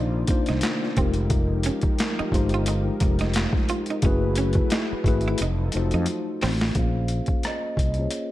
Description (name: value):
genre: R&B, neo-soul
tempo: 88 BPM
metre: 4/4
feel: swing 56% on 16ths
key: unclear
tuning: A4 = 439 Hz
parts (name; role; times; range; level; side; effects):
- electric guitar through a small old amp; melody; 0.0-0.9, 6.8-8.3 s; D5 to F5; -34 LUFS; right 1 dB; low-pass filter, slapback echo
- archtop guitar, miked and amplified; second line; 0.0-6.5 s; C4 to F4; -32 LUFS; right 5 dB; none
- mellow tine electric piano; accompaniment; 0.0-8.3 s; Ab3 to Db5; -27 LUFS; left 2 dB; medium stereo tremolo, low-pass filter
- warm analog pad; sustained chords; 0.0-6.7 s; C3 to D5; -36 LUFS; equal; chorus
- fretless electric bass; bass; 0.0-8.1 s; F1 to F2; -25 LUFS; equal; none
- boom bap sampler-style drum kit; drums; 0.3-8.3 s; handclaps, hi-hat, kick drum, rim click, snare drum; -24 LUFS; equal; overdrive
room: light reverb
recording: dark, warm production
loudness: -21 LUFS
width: side -15 dB against mid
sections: 0.0-6.8 A section; 6.8-8.3 B section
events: drum fill 5.4-6.8; filter sweep 6.8-8.3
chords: 0.0 Cm11; 1.0 Fm11; 4.0 Gbm11; 5.4 F7b9; 6.8 Bbm9